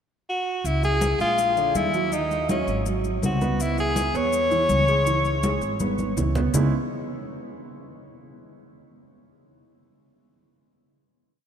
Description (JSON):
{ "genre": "Afro-Cuban jazz", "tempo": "163 BPM", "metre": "4/4", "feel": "straight", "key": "C# minor", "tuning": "A4 = 439 Hz", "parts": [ { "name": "breathy tenor saxophone", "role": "melody", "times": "0.3-6.2 s", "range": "C#4 to C#5", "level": "-24 LUFS", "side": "left 2 dB", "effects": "slapback echo" }, { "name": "upright bass", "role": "bass", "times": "0.6-6.7 s", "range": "G#1 to E2", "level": "-26 LUFS", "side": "equal", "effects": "none" }, { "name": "congas", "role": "percussion", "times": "0.7-6.6 s", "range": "none", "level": "-30 LUFS", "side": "left 1 dB", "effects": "none" }, { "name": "maracas", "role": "percussion", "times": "0.7-6.6 s", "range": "none", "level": "-35 LUFS", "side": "left 11 dB", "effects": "none" }, { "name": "dark baby grand piano", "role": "accompaniment", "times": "0.8-6.7 s", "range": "B#2 to E5", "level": "-29 LUFS", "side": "right 5 dB", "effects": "none" } ], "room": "wet cathedral reverb, RT60 5.1 s", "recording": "in a vast, echoing space", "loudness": "-21 LUFS", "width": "side -8 dB against mid", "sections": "0.0-0.7 pickup bar; 0.7-6.5 A section; 6.5-8.0 final chord", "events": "drum fill 5.8-6.5", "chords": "0.0 N.C.; 0.7 C#m; 1.4 A#7; 2.1 G#7sus4; 2.9 G#7#9; 3.6 C#m7; 6.5 C#m9" }